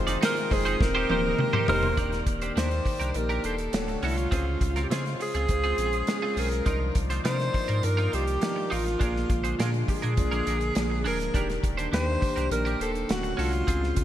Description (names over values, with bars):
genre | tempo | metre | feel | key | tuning
polished 1980s jazz-funk pop | 102 BPM | 4/4 | straight | Eb major | A4 = 441 Hz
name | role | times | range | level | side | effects
warm concert grand piano | accompaniment | 0.0-14.0 s | Db3 to D5 | -33 LUFS | left 1 dB | wide subtle chorus
chorused pulse-width pad | sustained chords | 0.0-14.0 s | Db3 to D5 | -37 LUFS | equal | none
warm sub bass | bass | 0.0-14.0 s | D1 to Db3 | -30 LUFS | equal | none
clean electric guitar | riff | 0.1-14.0 s | C4 to D5 | -33 LUFS | right 3 dB | analog chorus
modern studio drum kit | drums | 0.1-14.0 s | hi-hat, kick drum, snare drum, toms | -29 LUFS | equal | gated reverb
breathy alto saxophone | melody | 0.2-14.0 s | F4 to C5 | -30 LUFS | equal | none
mellow horn section | second line | 1.2-2.1 s | G3 to C5 | -37 LUFS | right 2 dB | none
room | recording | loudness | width
light reverb | bright 1980s-style digital production | -24 LUFS | side -12 dB against mid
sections
0.0-2.0 A section; 2.0-14.0 B section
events
band accent 0.0-2.0; drum fill 0.8-2.0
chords
0.0 Fm7; 0.8 Eb6; 2.0 Ebmaj7; 3.7 Dmaj7; 4.3 Dbmaj7; 6.7 Cm11; 9.0 Bb7; 11.3 Ebmaj7; 13.1 Dmaj7